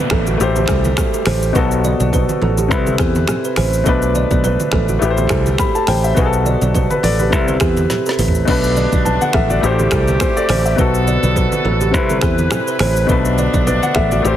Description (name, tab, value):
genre	afrobeats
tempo	104 BPM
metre	4/4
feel	swing 55% on 16ths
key	unclear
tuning	A4 = 441 Hz
part	clear grand piano	accompaniment	0.0-14.4 s	B2 to B5	-19 LUFS	left 5 dB	none
part	downlifter	sound effects	0.0-3.9 s	none	-30 LUFS	equal	none
part	kalimba	riff	0.1-14.2 s	F#4 to D5	-21 LUFS	right 7 dB	ping-pong delay
part	modern bright fingered electric bass	bass	0.1-14.4 s	A1 to E2	-18 LUFS	equal	none
part	afro-pop drum kit	drums	0.1-14.4 s	crash cymbal, finger snaps, hi-hat, kick drum, rim click, shaker, snare drum, toms	-20 LUFS	equal	none
part	congas	percussion	0.1-14.2 s	none	-24 LUFS	right 2 dB	none
part	clear woodwind section	sustained chords	8.5-14.4 s	C3 to B4	-23 LUFS	right 1 dB	none
room	light reverb, small room ambience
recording	heavily compressed radio sound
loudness	-13 LUFS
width	side -11 dB against mid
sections	0.0-14.4 A section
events	drum fill 7.9-8.5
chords	0.4 Am7; 1.6 Gmaj7/B (rootless); 2.7 Cmaj7; 3.9 Bm7; 5.0 Am7; 6.2 Gmaj7/B (rootless); 7.3 Cmaj7; 8.5 Bm7; 9.6 Am7; 10.8 Gmaj7/B (rootless); 11.9 Cmaj7; 13.1 Bm7